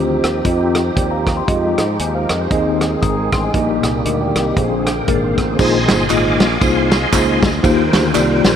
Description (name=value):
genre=uptempo gospel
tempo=117 BPM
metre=4/4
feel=swing 58% on 8ths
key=Eb major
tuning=A4 = 440 Hz
part: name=mellow tine electric piano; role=accompaniment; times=0.0-8.5 s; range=Bb2 to Eb6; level=-18 LUFS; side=left 2 dB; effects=medium stereo tremolo
part: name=bright tonewheel organ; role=sustained chords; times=0.0-8.6 s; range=D3 to Eb6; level=-21 LUFS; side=right 1 dB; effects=slow rotary speaker, chorus vibrato
part: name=dark French horn section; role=sustained chords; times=0.0-5.6 s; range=G3 to Ab4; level=-31 LUFS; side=right 2 dB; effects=none
part: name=modern bright fingered electric bass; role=bass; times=0.0-8.6 s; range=G1 to Ab2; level=-21 LUFS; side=equal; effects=none
part: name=warm soul drum kit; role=drums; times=0.2-8.5 s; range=crash cymbal, hi-hat, kick drum, ride cymbal, rim click, snare drum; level=-19 LUFS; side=equal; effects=none
part: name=tambourine and handclaps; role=percussion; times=5.6-8.5 s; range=none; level=-25 LUFS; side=right 4 dB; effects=none
room=wet cathedral reverb, RT60 6.7 s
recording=dreamy mix soaked in reverb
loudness=-13 LUFS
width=side -8 dB against mid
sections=0.0-5.6 A section; 5.6-8.6 B section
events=tonewheel organ fill 4.6-5.6; tonewheel organ solo 5.6-8.6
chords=0.0 Eb69; 1.5 Fm9; 2.5 Ab/Eb; 3.5 Eb/Bb; 4.6 Bb9; 5.6 Bb9sus4; 7.6 Eb69